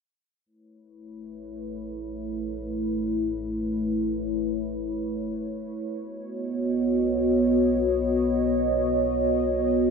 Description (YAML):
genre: ambient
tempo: free time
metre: none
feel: none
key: unclear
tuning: A4 = 438 Hz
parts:
  - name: phased analog pad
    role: sustained chords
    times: 1.1-9.9 s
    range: A3 to D#5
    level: -24 LUFS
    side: equal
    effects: phaser, chorus
  - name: analog drone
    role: bass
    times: 1.4-9.9 s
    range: A1 to B1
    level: -38 LUFS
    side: equal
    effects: chorus
room: wet huge ambient reverb, RT60 8.1 s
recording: none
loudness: -24 LUFS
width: side -5 dB against mid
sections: 0.5-9.9 A section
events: fade-in on synth drone 0.5-9.9; filter sweep on analog synth pad 0.5-9.9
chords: 0.5 Aadd9; 6.0 Badd9